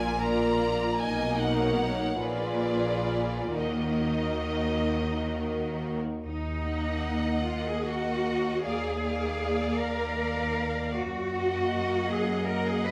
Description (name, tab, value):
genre	classical, slow romantic movement for string orchestra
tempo	43-53 BPM (dotted quarters)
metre	6/8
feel	rubato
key	Eb minor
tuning	A4 = 441 Hz
part	rich studio violin section	melody	0.0-12.9 s	D5 to Bb5	-37 LUFS	equal	none
part	rich studio violin section	second line	0.0-12.9 s	Gb4 to D#5	-36 LUFS	equal	none
part	clear studio viola section	accompaniment	0.0-12.9 s	Bb3 to F4	-34 LUFS	equal	none
part	bright studio cello section	bass	0.0-12.9 s	Bb2 to Cb5	-34 LUFS	equal	none
part	rich studio double bass section	bass	0.0-12.9 s	Bb1 to Gb2	-36 LUFS	equal	none
room	wet recital hall reverb, RT60 1.8 s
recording	none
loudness	-29 LUFS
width	mono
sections	0.0-6.2 A section; 6.2-12.9 A section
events	none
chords	0.0 Bb; 1.0 Bmaj7; 2.2 Bb7b9; 3.6 Ebm; 8.6 Bb7/Eb; 11.0 Ebm/Gb